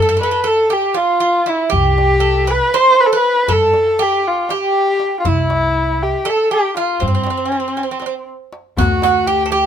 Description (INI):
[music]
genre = Turkish makam ensemble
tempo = 238 BPM (eighths)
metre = 7/8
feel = straight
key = C makam rast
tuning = A4 = 440 Hz
[part]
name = rich kamancheh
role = melody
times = 0.0-9.7 s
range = C4 to C5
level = -15 LUFS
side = left 1 dB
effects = none
[part]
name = Greek bouzouki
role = second line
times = 0.0-9.7 s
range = C4 to C5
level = -19 LUFS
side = right 6 dB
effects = none
[part]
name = upright bass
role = bass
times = 0.0-9.6 s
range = C2 to G2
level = -20 LUFS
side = equal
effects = none
[part]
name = darbuka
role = percussion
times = 0.1-9.3 s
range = none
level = -22 LUFS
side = left 3 dB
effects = none
[part]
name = riq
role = percussion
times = 8.8-9.1 s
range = none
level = -24 LUFS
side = left 5 dB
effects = none
[sound]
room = light reverb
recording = minimal, uncompressed stereo recording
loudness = -13 LUFS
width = side -8 dB against mid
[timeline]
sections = 0.0-8.8 A section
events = none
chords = none